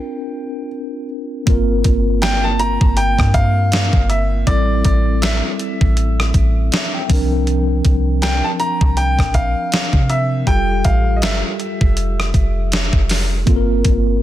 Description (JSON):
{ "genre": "contemporary R&B", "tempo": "80 BPM", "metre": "4/4", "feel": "swing 58% on 16ths", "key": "G dorian", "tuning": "A4 = 440 Hz", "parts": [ { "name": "clear baby grand piano", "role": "melody", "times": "0.0-13.1 s", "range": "D5 to Bb5", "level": "-22 LUFS", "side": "equal", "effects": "digital delay" }, { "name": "mellow tine electric piano", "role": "accompaniment", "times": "0.0-14.2 s", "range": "F3 to G5", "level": "-22 LUFS", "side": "equal", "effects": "medium stereo tremolo" }, { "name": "soft 808-style bass", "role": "bass", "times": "1.5-14.2 s", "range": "F1 to C3", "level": "-17 LUFS", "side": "equal", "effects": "none" }, { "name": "gated 80s digital drum machine", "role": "drums", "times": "1.5-14.0 s", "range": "hi-hat, kick drum, rim click, snare drum", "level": "-17 LUFS", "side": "equal", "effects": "gated reverb, gated reverb snare, soft clipping on snare" } ], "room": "little or no reverb", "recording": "dense, heavily limited modern master", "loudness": "-14 LUFS", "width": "side -13 dB against mid", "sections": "0.0-1.5 A section; 1.5-14.2 B section", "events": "break 0.0-1.5; tine electric piano fill 6.3-7.5", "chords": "0.0 C9sus4; 1.5 Gm7; 4.5 Am7; 7.1 C9sus4; 10.5 Fmaj9; 13.5 Gm11" }